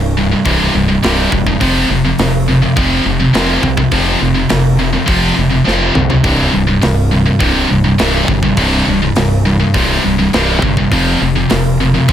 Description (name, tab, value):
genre	heavy metal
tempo	103 BPM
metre	4/4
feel	straight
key	unclear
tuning	A4 = 438 Hz
part	scooped high-gain guitar	riff	0.0-12.1 s	C2 to F3	-12 LUFS	equal	distortion
part	growling fingered electric bass	bass	0.0-12.1 s	C1 to C2	-17 LUFS	equal	overdrive
part	tight metal drum kit	drums	0.5-12.1 s	hi-hat, kick drum, snare drum, toms	-18 LUFS	equal	none
room	moderate studio ambience, RT60 0.5 s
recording	none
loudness	-10 LUFS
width	side -10 dB against mid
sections	0.0-12.1 A section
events	drum fill 5.7-6.2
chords	0.0 C; 1.6 F5; 6.2 C5; 10.9 F5